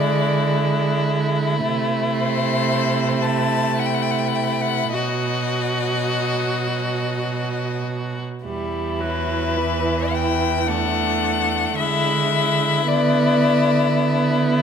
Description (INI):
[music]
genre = classical, slow romantic movement for string quartet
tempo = 53 BPM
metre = 3/4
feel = uneven beats, rubato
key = unclear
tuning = A4 = 441 Hz
[part]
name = clear violin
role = melody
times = 0.0-14.5 s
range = B4 to A5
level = -24 LUFS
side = left 9 dB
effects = none
[part]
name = clear violin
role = second line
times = 0.0-14.6 s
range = D4 to F#4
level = -24 LUFS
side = left 4 dB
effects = none
[part]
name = rich viola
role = accompaniment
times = 0.0-14.6 s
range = E3 to B3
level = -25 LUFS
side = right 5 dB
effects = none
[part]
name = warm cello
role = bass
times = 0.0-14.6 s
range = E2 to D3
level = -23 LUFS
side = right 4 dB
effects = none
[sound]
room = moderate recital hall reverb, RT60 1.5 s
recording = close, detailed microphones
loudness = -18 LUFS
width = side -7 dB against mid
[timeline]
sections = 0.0-14.6 A section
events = none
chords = 0.0 E7/D; 1.6 Am/C; 4.9 B; 8.5 Em; 11.8 E7/D